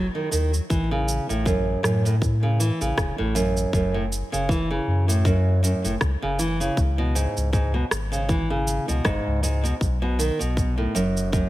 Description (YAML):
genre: folktronica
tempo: 79 BPM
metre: 4/4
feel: swing 56% on 16ths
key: A lydian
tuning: A4 = 439 Hz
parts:
  - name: nylon-string guitar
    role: arpeggios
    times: 0.0-11.5 s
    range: F#2 to E3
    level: -24 LUFS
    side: right 1 dB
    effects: tape echo
  - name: warm sub bass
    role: bass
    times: 0.0-11.5 s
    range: E1 to A2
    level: -24 LUFS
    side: equal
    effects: none
  - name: electronic shaker and rim click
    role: drums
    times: 0.3-11.5 s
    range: none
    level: -30 LUFS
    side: right 1 dB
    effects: studio reverb
  - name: electronic kick drum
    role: drums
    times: 0.7-11.5 s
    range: none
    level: -24 LUFS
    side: equal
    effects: studio reverb
room: little or no reverb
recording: none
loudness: -20 LUFS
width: side -16 dB against mid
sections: 0.0-11.5 A section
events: none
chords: 0.0 B (rootless); 0.7 A6; 3.7 F#7(no3); 6.8 C#7(no3); 9.8 B5